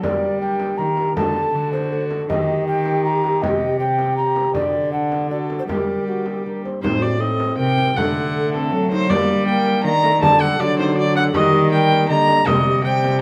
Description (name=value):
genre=classical, renaissance-style consort dance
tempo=160 BPM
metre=3/4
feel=straight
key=G harmonic minor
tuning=A4 = 443 Hz
part: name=mellow hollow tenor recorder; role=melody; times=0.0-13.2 s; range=C4 to Bb5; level=-25 LUFS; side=equal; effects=none
part: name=rich viola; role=second line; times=0.0-13.2 s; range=F#4 to Bb5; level=-24 LUFS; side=equal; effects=none
part: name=concert harp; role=accompaniment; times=0.0-13.2 s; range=A2 to C5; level=-32 LUFS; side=equal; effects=none
part: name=mellow trombone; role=accompaniment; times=0.0-13.2 s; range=F#3 to C5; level=-27 LUFS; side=equal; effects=none
part: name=dark cello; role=bass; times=0.0-13.2 s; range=A2 to G3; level=-25 LUFS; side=equal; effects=none
part: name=frame drum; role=percussion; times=0.0-13.2 s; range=none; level=-31 LUFS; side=equal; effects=none
room=moderate stone room reverb, RT60 1.4 s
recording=none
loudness=-19 LUFS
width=mono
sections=0.0-6.8 A section; 6.8-13.2 A section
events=none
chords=0.0 Gm; 1.2 Dsus4; 1.5 D; 2.3 Eb; 3.4 Cm; 4.5 Dsus4; 4.9 D; 5.7 Gm; 6.8 Adim; 8.0 D; 9.1 Gm; 10.2 Dsus4; 10.6 D; 11.3 Eb; 12.5 Cm